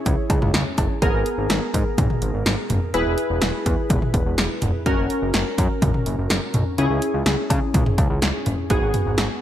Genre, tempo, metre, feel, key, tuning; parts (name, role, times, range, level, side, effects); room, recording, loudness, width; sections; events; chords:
synth-pop; 125 BPM; 4/4; straight; G# minor; A4 = 440 Hz
warm analog keys; accompaniment; 0.0-9.4 s; B3 to C#5; -24 LUFS; equal; chorus
fat analog bass; bass; 0.1-9.3 s; E1 to C#3; -24 LUFS; equal
punchy analog drum machine; drums; 0.1-9.3 s; cowbell, hi-hat, kick drum, snare drum, toms; -21 LUFS; equal; gated reverb
light reverb, digital ambience; bright 1980s-style digital production; -18 LUFS; side -11 dB against mid
0.0-1.0 A section; 1.0-8.7 B section
0.0 C#m; 1.0 G#madd9; 2.9 E; 4.9 F#; 6.8 C#m; 8.7 G#m7